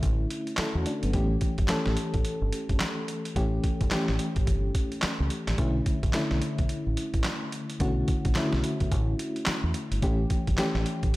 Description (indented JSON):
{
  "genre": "R&B, new jack swing",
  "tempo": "108 BPM",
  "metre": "4/4",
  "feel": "swing 61% on 16ths",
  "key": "B minor",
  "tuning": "A4 = 439 Hz",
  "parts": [
    { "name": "FM electric piano with tremolo", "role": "accompaniment", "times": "0.0-11.2 s", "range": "D3 to A4", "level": "-30 LUFS", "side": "left 1 dB", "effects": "none" },
    { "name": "deep dub fingered electric bass", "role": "bass", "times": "0.0-11.1 s", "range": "G1 to E2", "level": "-28 LUFS", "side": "equal", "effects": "none" },
    { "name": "boom bap sampler-style drum kit", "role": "drums", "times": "0.0-11.2 s", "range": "handclaps, hi-hat, kick drum, snare drum", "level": "-29 LUFS", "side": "equal", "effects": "none" }
  ],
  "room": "little or no reverb",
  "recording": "none",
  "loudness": "-25 LUFS",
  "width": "side -19 dB against mid",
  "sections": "0.0-11.2 A section",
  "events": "none",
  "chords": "0.0 Bm11 (rootless); 1.1 A7; 5.6 Bm11; 10.0 A7"
}